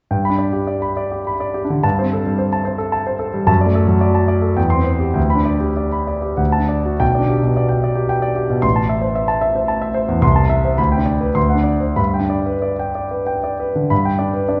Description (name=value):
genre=classical, romantic character piece for solo piano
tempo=90-116 BPM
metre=3/4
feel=rubato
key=G major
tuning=A4 = 439 Hz
part: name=clear concert grand piano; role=solo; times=0.1-14.6 s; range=A1 to C6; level=-18 LUFS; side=equal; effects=none
room=wet recital hall reverb, RT60 1.8 s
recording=heard from further back in the room, nothing above 7.8 kHz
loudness=-18 LUFS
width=mono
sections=0.1-13.9 A section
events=none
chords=0.1 G; 1.8 Am7/G; 3.5 D/F#; 4.6 C/E; 5.2 G/D; 6.4 D; 7.0 G/B; 8.6 Am; 10.2 Am/C; 10.8 G/D; 11.4 D7; 12.0 G